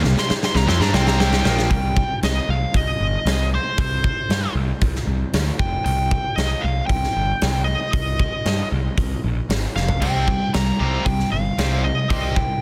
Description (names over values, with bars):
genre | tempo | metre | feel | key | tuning
hard rock | 116 BPM | 4/4 | straight | C minor | A4 = 440 Hz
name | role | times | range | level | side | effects
cranked stack guitar | riff | 0.0-1.7, 10.0-12.6 s | Bb2 to D4 | -28 LUFS | equal | overdrive
cranked stack guitar | riff | 0.0-1.7, 10.0-12.6 s | Bb2 to D4 | -28 LUFS | equal | overdrive, spring reverb
fuzz picked electric bass | bass | 0.0-12.4 s | F1 to G2 | -25 LUFS | equal | overdrive
huge arena drum kit | drums | 0.0-12.5 s | crash cymbal, hi-hat, kick drum, snare drum, toms | -25 LUFS | equal | none
nasal lead guitar with a parked wah | melody | 0.2-12.6 s | C5 to C6 | -27 LUFS | equal | overdrive, digital delay
room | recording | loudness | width
small room ambience | dense, heavily limited modern master | -20 LUFS | mono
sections
0.0-1.7 A section; 1.7-12.6 B section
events
drum fill 0.0-1.7, 9.8; lead electric guitar solo 0.0-1.7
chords
0.0 C5; 1.7 Cm; 5.3 N.C.; 5.6 Fsus2; 5.9 Cm; 9.5 N.C.; 10.0 C5